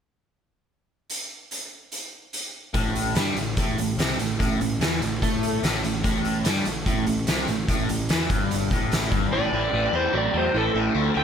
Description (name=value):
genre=blues rock power trio and southern rock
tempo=146 BPM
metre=4/4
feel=straight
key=A minor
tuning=A4 = 440 Hz
part: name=oversized low-tuned drum kit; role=drums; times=1.1-9.2 s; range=hi-hat, kick drum, snare drum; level=-26 LUFS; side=equal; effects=none
part: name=biting overdriven guitar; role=riff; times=2.7-11.2 s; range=G2 to A3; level=-25 LUFS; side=equal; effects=phaser
part: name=fuzz picked electric bass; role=bass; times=2.7-11.2 s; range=G1 to A2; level=-28 LUFS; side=equal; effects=overdrive
part: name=overdriven slide guitar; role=melody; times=9.3-11.2 s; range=A4 to G5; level=-25 LUFS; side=equal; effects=none
part: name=overdriven tonewheel organ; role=sustained chords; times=9.3-11.2 s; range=C4 to D5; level=-32 LUFS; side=right 3 dB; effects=none
room=light reverb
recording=none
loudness=-22 LUFS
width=side -8 dB against mid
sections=1.1-2.7 A section; 2.7-9.3 B section; 9.3-11.2 C section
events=none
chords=1.1 N.C.; 9.3 Am7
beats=| 1.10 1.51 1.92 2.34 | 2.75 3.16 3.57 3.99 | 4.40 4.81 5.22 5.64 | 6.05 6.46 6.87 7.28 | 7.69 8.10 8.51 8.92 | 9.32 9.73 10.14 10.54 | 10.95